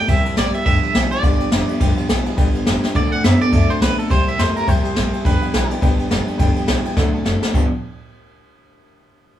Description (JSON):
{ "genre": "rockabilly", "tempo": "209 BPM", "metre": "4/4", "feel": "swing 59% on 8ths", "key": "G mixolydian", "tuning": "A4 = 442 Hz", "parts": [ { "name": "twangy electric guitar", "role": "melody", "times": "0.0-5.8 s", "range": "A4 to F#5", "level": "-22 LUFS", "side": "right 2 dB", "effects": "tremolo" }, { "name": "dark upright piano", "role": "accompaniment", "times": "0.0-7.7 s", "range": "A4 to Bb5", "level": "-30 LUFS", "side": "left 2 dB", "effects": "none" }, { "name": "picked steel-string acoustic guitar", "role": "accompaniment", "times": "0.0-7.7 s", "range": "G2 to A4", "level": "-27 LUFS", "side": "left 1 dB", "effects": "none" }, { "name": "electric guitar through a small old amp", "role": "riff", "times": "0.0-7.7 s", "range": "G2 to D4", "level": "-23 LUFS", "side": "right 1 dB", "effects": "none" }, { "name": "upright bass", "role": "bass", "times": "0.1-7.7 s", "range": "F1 to F#2", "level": "-22 LUFS", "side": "equal", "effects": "none" }, { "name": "jazz brush drum kit", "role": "drums", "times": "0.1-7.6 s", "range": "crash cymbal, kick drum, ride cymbal, snare drum", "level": "-18 LUFS", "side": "equal", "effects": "none" } ], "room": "moderate studio reverb, RT60 0.9 s", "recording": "band playing live in one room, small room ambience", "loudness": "-15 LUFS", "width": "side -11 dB against mid", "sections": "0.0-7.5 A section; 7.5-8.7 B section", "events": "upright piano fill 2.1-3.0; drum fill 2.8, 7.0-7.5", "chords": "0.0 C7; 0.7 G7; 3.0 D7; 4.1 C7; 5.2 G7; 7.0 D7; 7.5 G7" }